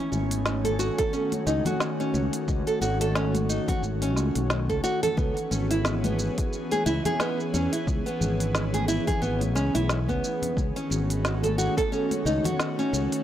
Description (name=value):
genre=organic downtempo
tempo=89 BPM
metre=4/4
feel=swing 57% on 16ths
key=unclear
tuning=A4 = 440 Hz
part: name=airy breathy pad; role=sustained chords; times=0.0-13.2 s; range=D#3 to G#5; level=-30 LUFS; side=equal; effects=chorus, sidechain pumping
part: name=nylon-string guitar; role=arpeggios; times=0.0-13.2 s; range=B3 to A4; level=-28 LUFS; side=right 1 dB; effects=analog delay
part: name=fretless electric bass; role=bass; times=0.1-13.1 s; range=G#1 to E2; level=-28 LUFS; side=equal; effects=lush chorus, sidechain pumping
part: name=organic electronic drum kit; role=drums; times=0.1-13.2 s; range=hi-hat, shaker, snare drum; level=-32 LUFS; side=equal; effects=none
part: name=congas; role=percussion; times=0.1-13.1 s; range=none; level=-35 LUFS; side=left 4 dB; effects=none
part: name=electronic kick drum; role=drums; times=1.0-11.9 s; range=none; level=-29 LUFS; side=equal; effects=none
room=light reverb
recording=dry, gritty hardware recording, transformer saturation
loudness=-23 LUFS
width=side -11 dB against mid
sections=0.0-13.2 A section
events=none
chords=0.0 D#m7b5; 5.2 C#m7; 10.6 D#m7b5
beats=0.46 1.13 1.80 | 2.48 3.15 3.83 4.50 | 5.18 5.85 6.52 7.20 | 7.87 8.55 9.22 9.89 | 10.57 11.24 11.92 12.59